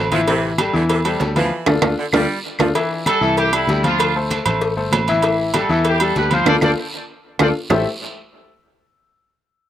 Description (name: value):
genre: latin, salsa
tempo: 194 BPM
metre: 4/4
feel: straight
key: A minor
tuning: A4 = 440 Hz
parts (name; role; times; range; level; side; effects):
- bright upright piano; accompaniment; 0.0-7.9 s; E3 to F5; -20 LUFS; left 3 dB; none
- fingered electric bass; bass; 0.0-7.8 s; G1 to E2; -23 LUFS; equal; none
- bright saxophone section; second line; 0.1-2.7 s; C3 to G3; -23 LUFS; right 2 dB; none
- agogo bells and timbales; percussion; 0.1-7.8 s; none; -22 LUFS; right 6 dB; slapback echo
- congas; percussion; 0.1-7.8 s; none; -27 LUFS; left 1 dB; none
- guiro; percussion; 0.1-7.8 s; none; -33 LUFS; right 3 dB; none
- cowbell and bongos; percussion; 0.3-7.8 s; none; -26 LUFS; left 4 dB; slapback echo
- claves; percussion; 0.6-7.8 s; none; -27 LUFS; right 1 dB; none
- clear trumpet section; melody; 3.1-7.9 s; E4 to D5; -20 LUFS; right 1 dB; slapback echo
room: little or no reverb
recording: recorded outdoors, with no room sound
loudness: -15 LUFS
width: side -11 dB against mid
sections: 0.0-2.8 A section; 2.8-7.7 B section; 7.7-8.9 C section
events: drum fill 1.5-2.8, 6.9-7.7; band accent 1.5-2.8, 6.5-7.7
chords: 0.3 Am7; 1.5 Dm; 2.8 Am7; 4.0 Dm7; 5.2 A5; 6.5 Dm; 7.7 Am7